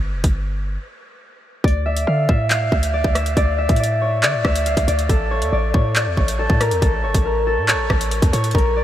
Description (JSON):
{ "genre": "hip hop, drill", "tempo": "139 BPM", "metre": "4/4", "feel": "half-time", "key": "unclear", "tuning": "A4 = 439 Hz", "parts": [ { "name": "hard-hitting 808-style bass", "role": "bass", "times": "0.0-8.8 s", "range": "F1 to D3", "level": "-21 LUFS", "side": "equal", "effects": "none" }, { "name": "drill drum kit", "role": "drums", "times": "0.2-8.7 s", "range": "handclaps, hi-hat, kick drum, rim click", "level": "-20 LUFS", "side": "equal", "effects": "none" }, { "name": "concert harp", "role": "melody", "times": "1.6-8.8 s", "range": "A4 to F5", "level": "-20 LUFS", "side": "left 1 dB", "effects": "low-pass filter" } ], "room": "moderate huge ambient reverb, RT60 8.7 s", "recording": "dreamy mix soaked in reverb", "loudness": "-16 LUFS", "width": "side -12 dB against mid", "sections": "0.0-8.8 A section", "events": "break 0.0-1.6", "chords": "0.0 G5; 1.6 D5; 5.1 A" }